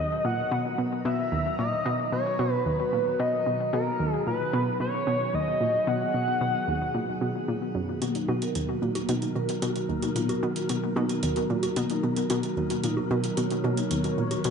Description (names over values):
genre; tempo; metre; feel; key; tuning
ambient, sequencer-driven space music; 112 BPM; 4/4; straight; B major; A4 = 440 Hz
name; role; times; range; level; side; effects
pulse-width lead; melody; 0.0-7.5 s; A#4 to F#5; -27 LUFS; equal; chorus, shimmer reverb, ping-pong delay
sweeping resonant pad; sustained chords; 0.0-14.5 s; B2 to A#5; -33 LUFS; right 3 dB; chorus, shimmer reverb
analog pluck; riff; 0.0-14.5 s; D#2 to B2; -29 LUFS; left 1 dB; chorus, cassette tape, shimmer reverb, ping-pong delay
wind-like tuned noise texture; texture; 0.0-14.5 s; B3 to A#4; -42 LUFS; equal; built-in reverb, shimmer reverb
vibraphone with soft mallets; arpeggios; 8.0-14.4 s; A#3 to A#4; -30 LUFS; moving between left 4 dB and right 5 dB; auto-pan, shimmer reverb, ping-pong delay
electronic hi-hat and bongos; percussion; 8.0-14.5 s; none; -34 LUFS; equal; ping-pong delay
room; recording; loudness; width
wet plate reverb, RT60 3.1 s; nothing above 10.7 kHz; -24 LUFS; side -6 dB against mid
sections
0.0-14.5 A section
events
fade-in on analog synth pad 0.0-14.5; fade-in on synth texture 0.0-14.5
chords
0.0 Bmaj7